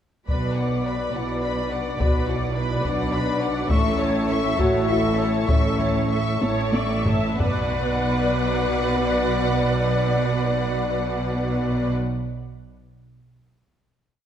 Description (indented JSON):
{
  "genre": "cinematic, epic orchestral film score",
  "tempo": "60-70 BPM (dotted quarters)",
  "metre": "6/8",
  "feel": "straight",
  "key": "B minor",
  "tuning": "A4 = 441 Hz",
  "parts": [
    { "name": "rich symphonic violin section", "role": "melody", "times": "0.3-11.9 s", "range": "F#5 to C#6", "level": "-32 LUFS", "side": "left 3 dB", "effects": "none" },
    { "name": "warm symphonic violin section", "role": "second line", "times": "0.3-11.9 s", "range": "B4 to E5", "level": "-31 LUFS", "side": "left 4 dB", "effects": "none" },
    { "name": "warm symphonic viola section", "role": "accompaniment", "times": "0.3-11.9 s", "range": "A4 to E5", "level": "-30 LUFS", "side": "right 2 dB", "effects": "none" },
    { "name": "dark French horn section", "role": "sustained chords", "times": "0.3-11.9 s", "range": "B3 to F#4", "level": "-29 LUFS", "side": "left 3 dB", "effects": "none" },
    { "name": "warm woodwind section", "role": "sustained chords", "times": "0.3-11.9 s", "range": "B3 to E5", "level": "-30 LUFS", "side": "left 1 dB", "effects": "none" },
    { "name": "clear symphonic double bass section", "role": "bass", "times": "0.3-11.9 s", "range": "A1 to B1", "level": "-27 LUFS", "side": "right 3 dB", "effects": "none" },
    { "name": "rich symphonic cello section", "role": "bass", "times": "0.3-11.9 s", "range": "A2 to B2", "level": "-27 LUFS", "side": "right 2 dB", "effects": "none" },
    { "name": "taiko ensemble", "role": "drums", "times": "0.3-7.6 s", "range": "none", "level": "-25 LUFS", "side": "left 1 dB", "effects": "none" }
  ],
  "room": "moderate scoring stage reverb, RT60 1.5 s",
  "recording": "none",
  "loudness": "-20 LUFS",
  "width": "side -9 dB against mid",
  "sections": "0.3-7.4 theme; 7.4-11.4 final chord",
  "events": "slowing down 2.9-7.4; drum fill 6.4-7.4",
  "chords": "0.3 Bm; 3.7 A; 7.4 Bm"
}